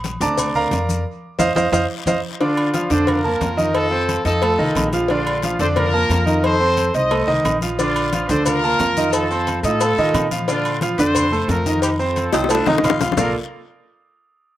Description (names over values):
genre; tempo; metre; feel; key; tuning
latin, salsa; 178 BPM; 4/4; straight; Bb major; A4 = 440 Hz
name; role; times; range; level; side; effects
upright bass; bass; 0.0-13.3 s; Bb1 to Bb2; -24 LUFS; left 1 dB; none
congas; percussion; 0.0-13.3 s; none; -29 LUFS; left 3 dB; none
cowbell and bongos; percussion; 0.0-13.3 s; none; -25 LUFS; left 8 dB; none
guiro; percussion; 0.0-13.3 s; none; -35 LUFS; left 9 dB; slapback echo
maracas; percussion; 0.1-2.1, 7.8-13.3 s; none; -32 LUFS; left 9 dB; none
timbales and agogo bells; percussion; 0.1-13.3 s; none; -28 LUFS; right 3 dB; slapback echo
bright concert grand piano; accompaniment; 0.2-13.3 s; D3 to Eb6; -20 LUFS; right 2 dB; slapback echo
warm horn section; melody; 2.4-13.3 s; D4 to Eb5; -21 LUFS; left 1 dB; none
growling baritone saxophone; second line; 12.3-13.3 s; C4 to F4; -24 LUFS; left 6 dB; none
room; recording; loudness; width
little or no reverb; recorded outdoors, with no room sound; -16 LUFS; side -13 dB against mid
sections
0.0-2.4 A section; 2.4-13.2 B section; 13.2-14.5 C section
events
grand piano solo 0.0-2.4; band accent 1.1-2.4; drum fill 1.4-2.4, 12.3-13.2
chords
0.0 Bbmaj7; 1.1 F5; 2.4 Bbmaj7; 3.8 F7; 5.1 Bbmaj7; 6.4 F7; 7.8 Bbmaj7; 9.1 F7; 10.5 Bbmaj7; 11.8 F7; 13.2 Bbmaj7